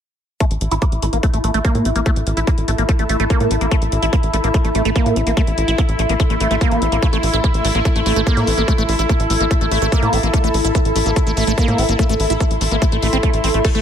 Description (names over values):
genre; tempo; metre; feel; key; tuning
psychedelic trance; 145 BPM; 4/4; straight; A phrygian; A4 = 440 Hz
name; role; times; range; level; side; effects
bubbling stepped-filter texture; sustained chords; 0.7-13.8 s; E4 to A4; -23 LUFS; left 2 dB; chorus, built-in reverb, sidechain pumping
liquid acid bass; riff; 0.4-13.8 s; A3 to E4; -22 LUFS; moving between left 4 dB and right 4 dB; phaser, auto-pan, sidechain pumping, digital delay
drum and bass drum kit; drums; 0.4-13.8 s; crash cymbal, hi-hat; -28 LUFS; left 3 dB; none
electronic kick drum; drums; 0.4-13.7 s; none; -16 LUFS; equal; none
granular cloud pad; texture; 1.4-13.8 s; A4 to C6; -24 LUFS; right 1 dB; built-in reverb, sidechain pumping
tight sequencer bass; bass; 0.5-13.8 s; A1 to A2; -19 LUFS; equal; none
dense compressed supersaw; melody; 13.6-13.8 s; A3 to A4; -21 LUFS; right 1 dB; phaser, sidechain pumping
room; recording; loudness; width
light reverb, digital ambience; none; -14 LUFS; side -9 dB against mid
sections
0.4-13.8 A section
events
none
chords
0.4 A5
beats
| 0.40 0.82 1.23 1.65 | 2.06 2.47 2.89 3.30 | 3.71 4.13 4.54 4.96 | 5.37 5.78 6.20 6.61 | 7.03 7.44 7.85 8.27 | 8.68 9.09 9.51 9.92 | 10.34 10.75 11.16 11.58 | 11.99 12.40 12.82 13.23 | 13.65